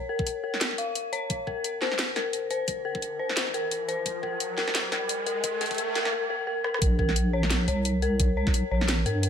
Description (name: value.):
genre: half-time drum and bass.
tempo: 174 BPM.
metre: 4/4.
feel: swing 57% on 16ths, half-time.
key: unclear.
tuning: A4 = 435 Hz.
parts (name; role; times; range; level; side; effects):
dark detuned synth bell; arpeggios; 0.0-9.3 s; Bb4 to F5; -29 LUFS; left 3 dB; chorus, low-pass filter, digital delay.
electronic kick drum; drums; 0.2-8.5 s; none; -27 LUFS; equal; none.
drum and bass drum kit; drums; 0.3-9.3 s; hi-hat, rim click, snare drum; -29 LUFS; equal; high-pass filter on hats, high-pass filter on snare, high-pass filter on room.
riser; sound effects; 2.8-6.1 s; none; -36 LUFS; right 2 dB; none.
deep soft wobble bass; bass; 6.8-9.3 s; Bb1 to G2; -25 LUFS; right 1 dB; chorus.
room: light reverb.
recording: high-pass filter.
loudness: -25 LUFS.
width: side -8 dB against mid.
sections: 0.0-6.8 A section; 6.8-9.3 B section.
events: build-up 0.0-6.8; filter sweep on synth bell 0.0-6.8; riser 2.8-6.1; drum fill 6.6; drop 6.8-9.3.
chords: 0.0 Bbm; 1.3 Bbsus2; 6.8 Bbm.